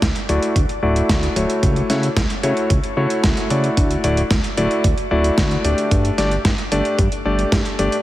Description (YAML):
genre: italo disco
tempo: 112 BPM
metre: 4/4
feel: straight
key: D major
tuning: A4 = 438 Hz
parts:
  - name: fat analog bass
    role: bass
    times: 0.0-7.9 s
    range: D1 to C#3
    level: -22 LUFS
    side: equal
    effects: none
  - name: dusty soul sampler-style drum kit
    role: drums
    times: 0.0-8.0 s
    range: hi-hat, snare drum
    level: -23 LUFS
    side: right 1 dB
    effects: overdrive
  - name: electronic kick drum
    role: drums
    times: 0.0-7.6 s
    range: none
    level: -20 LUFS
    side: equal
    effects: overdrive
  - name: warm electric grand piano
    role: stabs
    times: 0.3-7.9 s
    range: A3 to D5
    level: -20 LUFS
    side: left 1 dB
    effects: low-pass filter, ping-pong delay, shimmer reverb
room: moderate lush hall reverb, RT60 2.3 s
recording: heavily compressed radio sound, multiband compression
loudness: -16 LUFS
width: side -15 dB against mid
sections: 0.0-8.0 A section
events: none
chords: 0.0 Dadd9; 1.6 A6/C#; 3.8 Dadd9; 5.9 Gsus2